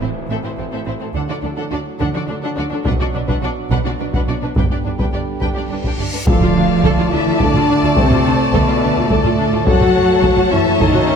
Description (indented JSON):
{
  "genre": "cinematic, epic orchestral film score",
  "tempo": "106 BPM",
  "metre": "3/4",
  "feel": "straight",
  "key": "unclear",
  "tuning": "A4 = 439 Hz",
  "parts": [
    { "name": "warm symphonic violin section", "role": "melody", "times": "0.0-11.2 s", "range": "A4 to G5", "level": "-27 LUFS", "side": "left 6 dB", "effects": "none" },
    { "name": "warm symphonic violin section", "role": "second line", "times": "0.0-11.2 s", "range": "C4 to A5", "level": "-24 LUFS", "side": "left 4 dB", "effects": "none" },
    { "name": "warm symphonic viola section", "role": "accompaniment", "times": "0.0-11.1 s", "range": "C4 to A4", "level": "-24 LUFS", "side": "right 1 dB", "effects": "none" },
    { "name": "mellow French horn section", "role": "sustained chords", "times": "0.0-11.2 s", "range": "A3 to F#4", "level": "-20 LUFS", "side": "left 4 dB", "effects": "none" },
    { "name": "warm trombone section", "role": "sustained chords", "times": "0.0-11.2 s", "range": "A2 to A3", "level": "-28 LUFS", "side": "right 5 dB", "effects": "none" },
    { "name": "dark symphonic double bass section", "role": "bass", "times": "0.0-11.1 s", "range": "F#1 to D2", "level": "-23 LUFS", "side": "right 5 dB", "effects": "none" },
    { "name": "warm symphonic cello section", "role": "bass", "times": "0.0-11.2 s", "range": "G2 to F#3", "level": "-22 LUFS", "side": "right 4 dB", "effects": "none" },
    { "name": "impact and reverse cymbal", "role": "sound effects", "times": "0.0-1.2, 5.8-8.0 s", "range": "none", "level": "-29 LUFS", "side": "left 1 dB", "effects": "none" },
    { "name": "solo taiko drums", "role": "drums", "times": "2.9-11.2 s", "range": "none", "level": "-19 LUFS", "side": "equal", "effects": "none" },
    { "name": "pipe organ, flutes", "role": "sustained chords", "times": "6.3-11.2 s", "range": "A3 to A5", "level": "-24 LUFS", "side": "right 1 dB", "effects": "none" }
  ],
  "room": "moderate concert hall reverb, RT60 2.2 s",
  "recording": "none",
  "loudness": "-14 LUFS",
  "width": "side -6 dB against mid",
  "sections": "0.0-6.3 A section; 6.3-11.2 B section",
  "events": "impact 0.0-1.2, 6.3-8.0; reverse cymbal 5.8-6.3",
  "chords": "0.0 Am; 1.2 D; 2.9 Bm; 4.6 G; 6.3 Dm; 9.7 F#m"
}